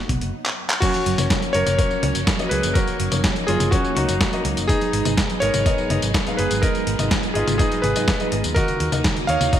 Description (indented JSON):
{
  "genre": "italo disco",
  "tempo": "124 BPM",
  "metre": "4/4",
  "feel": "straight",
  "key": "unclear",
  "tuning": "A4 = 440 Hz",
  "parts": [
    { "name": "clear electric grand piano", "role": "melody", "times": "0.0-9.6 s", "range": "C#4 to E#5", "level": "-23 LUFS", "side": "equal", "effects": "vintage 12-bit sampler grit, ping-pong delay" },
    { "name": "phased string machine", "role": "sustained chords", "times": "0.0-9.6 s", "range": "F#3 to E#4", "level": "-29 LUFS", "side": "right 1 dB", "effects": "ensemble chorus, phaser" },
    { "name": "soft round pluck", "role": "arpeggios", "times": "0.0-9.6 s", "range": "C#3 to B3", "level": "-30 LUFS", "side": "right 5 dB", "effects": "analog chorus" },
    { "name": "fingered electric bass with an envelope filter", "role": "bass", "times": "0.1-9.5 s", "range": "F#1 to G#2", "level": "-26 LUFS", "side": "equal", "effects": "none" },
    { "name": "dusty soul sampler-style drum kit", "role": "drums", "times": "0.1-9.6 s", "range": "crash cymbal, handclaps, hi-hat, snare drum, tambourine, toms", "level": "-24 LUFS", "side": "left 1 dB", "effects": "overdrive, gated reverb" },
    { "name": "electronic kick drum", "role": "drums", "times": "0.1-9.6 s", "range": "none", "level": "-23 LUFS", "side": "equal", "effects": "overdrive" },
    { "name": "dark grand piano", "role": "stabs", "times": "0.8-9.6 s", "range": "G#2 to E#5", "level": "-28 LUFS", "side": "left 2 dB", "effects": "none" }
  ],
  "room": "moderate plate reverb, RT60 1.4 s, digital ambience",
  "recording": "bright 1980s-style digital production",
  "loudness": "-18 LUFS",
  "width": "side -10 dB against mid",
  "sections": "0.8-9.6 A section",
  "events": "drum fill 0.5-0.8",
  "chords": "0.0 B; 0.8 F#; 4.7 G#m; 8.6 D#m"
}